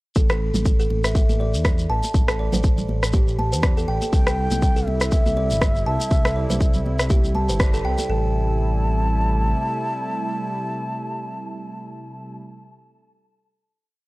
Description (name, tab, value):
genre	afro house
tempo	121 BPM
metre	4/4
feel	swing 56% on 16ths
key	A minor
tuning	A4 = 437 Hz
part	buzzing kalimba	arpeggios	0.2-8.3 s	G4 to A5	-28 LUFS	right 1 dB	sidechain pumping, tape echo
part	smooth gliding synth bass	bass	0.2-9.5 s	G1 to E2	-23 LUFS	equal	tube saturation, sidechain pumping
part	electronic kick drum	drums	0.2-7.7 s	none	-19 LUFS	equal	none
part	shekere	percussion	0.2-8.1 s	none	-33 LUFS	left 1 dB	none
part	electronic rim click	drums	0.3-7.7 s	none	-26 LUFS	equal	none
part	congas	percussion	0.3-8.1 s	none	-29 LUFS	right 1 dB	none
part	breathy bass bansuri	melody	4.1-12.4 s	E5 to A5	-28 LUFS	left 1 dB	vintage 12-bit sampler grit, tape echo
part	warm analog pad	sustained chords	4.1-12.4 s	C3 to E4	-30 LUFS	right 1 dB	chorus, sidechain pumping
room	little or no reverb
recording	dry, gritty hardware recording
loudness	-18 LUFS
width	side -21 dB against mid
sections	0.2-8.1 groove; 8.1-12.1 final chord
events	band accent 7.6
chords	0.2 A5; 4.1 C; 8.1 Am7